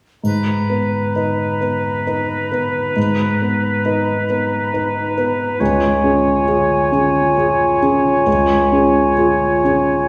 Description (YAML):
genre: cinematic, emotional film score for orchestra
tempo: 67 BPM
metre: 3/4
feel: rubato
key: G# dorian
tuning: A4 = 441 Hz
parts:
  - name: concert flute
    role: second line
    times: 0.2-10.1 s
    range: G#5 to A#5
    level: -24 LUFS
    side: equal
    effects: none
  - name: mellow clarinet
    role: second line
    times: 0.2-10.1 s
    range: D#4 to E#4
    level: -27 LUFS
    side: equal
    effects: none
  - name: warm grand piano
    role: accompaniment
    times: 0.2-10.1 s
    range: C#2 to B4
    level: -20 LUFS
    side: equal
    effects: none
  - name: triangle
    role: percussion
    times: 0.2-2.0 s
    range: none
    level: -45 LUFS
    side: equal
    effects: none
  - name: clear oboe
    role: second line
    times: 0.3-10.1 s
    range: B4 to C#5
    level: -22 LUFS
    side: equal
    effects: none
room: wet scoring stage reverb, RT60 1.6 s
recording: heard from further back in the room, studio ambience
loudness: -17 LUFS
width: mono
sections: 0.2-10.1 A section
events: none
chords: 0.2 G#madd9; 5.6 C#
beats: | 0.24 1.16 2.07 | 2.96 3.85 4.73 | 5.60 6.48 7.38 | 8.27 9.18